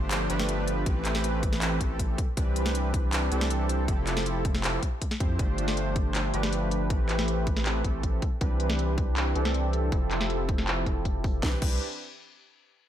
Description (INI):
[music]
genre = future bass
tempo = 159 BPM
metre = 4/4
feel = half-time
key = C major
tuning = A4 = 441 Hz
[part]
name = soft supersaw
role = riff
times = 0.0-11.8 s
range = E3 to C5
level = -30 LUFS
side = right 1 dB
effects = sidechain pumping, low-pass filter, ping-pong delay
[part]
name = saturated sub bass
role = bass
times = 0.0-11.8 s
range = F1 to F2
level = -30 LUFS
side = equal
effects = sidechain pumping
[part]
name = trap drum kit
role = drums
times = 0.1-11.7 s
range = crash cymbal, handclaps, hi-hat, snare drum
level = -32 LUFS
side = equal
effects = low-pass filter on hats, low-pass filter on cymbals, low-pass filter on snare, low-pass filter on toms
[part]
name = electronic kick drum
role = drums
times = 0.9-11.7 s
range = none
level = -28 LUFS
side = equal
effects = none
[sound]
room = little or no reverb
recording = none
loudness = -25 LUFS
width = side -11 dB against mid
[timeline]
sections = 0.0-11.4 A section; 11.4-12.9 B section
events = filter sweep on supersaw synth 0.0-11.4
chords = 0.0 G9sus4; 0.9 Am9; 2.2 Cmaj9; 3.9 Fmaj9; 5.4 G9sus4; 6.9 Am9; 8.2 Cmaj9; 9.9 Fmaj9; 11.4 Cmaj9